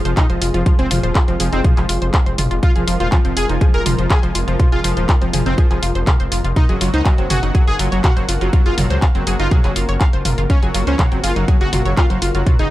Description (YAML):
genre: melodic techno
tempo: 122 BPM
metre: 4/4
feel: straight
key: F phrygian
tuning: A4 = 441 Hz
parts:
  - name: warm analog pad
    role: sustained chords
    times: 0.0-12.7 s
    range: C3 to Gb5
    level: -27 LUFS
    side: left 1 dB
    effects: chorus, sidechain pumping
  - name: overtone-sweeping drone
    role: drone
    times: 0.0-12.7 s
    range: F2 to F3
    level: -34 LUFS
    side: equal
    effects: none
  - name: wide unison lead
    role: melody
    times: 0.1-12.7 s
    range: F3 to Bb4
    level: -23 LUFS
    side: equal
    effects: sidechain pumping, tape echo
  - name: soft supersaw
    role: second line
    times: 0.1-12.7 s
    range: F4 to Bb5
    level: -30 LUFS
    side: equal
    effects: sidechain pumping, tape echo
  - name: wide unison pluck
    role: arpeggios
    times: 0.1-12.6 s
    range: C4 to F6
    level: -26 LUFS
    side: equal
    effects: sidechain pumping, tape echo
  - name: gritty driven synth bass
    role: bass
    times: 0.1-12.7 s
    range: Eb1 to Db2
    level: -20 LUFS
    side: equal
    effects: sidechain pumping
  - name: house drum kit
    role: drums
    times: 0.1-12.7 s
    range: handclaps, hi-hat, toms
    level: -22 LUFS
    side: equal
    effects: none
  - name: electronic kick drum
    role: drums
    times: 0.2-12.6 s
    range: none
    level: -14 LUFS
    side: equal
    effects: none
room: little or no reverb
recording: dry, gritty hardware recording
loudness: -14 LUFS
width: side -15 dB against mid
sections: 0.0-12.7 A section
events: none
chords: 0.0 Fm; 6.6 Gb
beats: 0.17 | 0.66 1.15 1.65 2.14 | 2.63 3.12 3.61 4.11 | 4.60 5.09 5.58 6.07 | 6.56 7.05 7.55 8.04 | 8.53 9.02 9.51 10.01 | 10.50 10.99 11.48 11.97 | 12.46